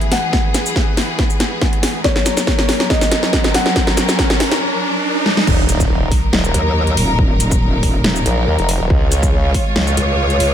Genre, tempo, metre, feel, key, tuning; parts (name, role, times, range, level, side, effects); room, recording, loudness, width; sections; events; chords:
heavy wobble dubstep; 140 BPM; 4/4; half-time; Eb minor; A4 = 440 Hz
felt-muted upright piano; melody; 0.0-4.6 s; Db5 to Gb5; -23 LUFS; left 3 dB; low-pass filter, ping-pong delay
clear symphonic string section; sustained chords; 0.0-10.5 s; E3 to Db5; -21 LUFS; left 1 dB; sidechain pumping
big-room dance drum kit; drums; 0.0-10.5 s; crash cymbal, hi-hat, shaker, snare drum; -18 LUFS; equal
riser and impact; sound effects; 1.5-7.2 s; -22 LUFS; right 1 dB
electronic kick drum; drums; 0.3-9.6 s; -17 LUFS; equal
formant-sweep wobble bass; bass; 5.5-10.0 s; Eb1 to Eb2; -17 LUFS; equal; chorus, overdrive
metallic wobble bass; bass; 6.5-10.5 s; Eb1 to Eb2; -17 LUFS; equal; chorus, overdrive
light reverb; -13 LUFS; side -10 dB against mid
0.0-5.5 A section; 5.5-10.5 B section
build-up 0.0-5.5; drum fill 0.0-4.6, 5.3; riser 1.5-5.5; drop 5.5-10.5; impact 5.5-7.2
0.0 E; 2.0 Gb; 5.5 Ebm; 8.9 Db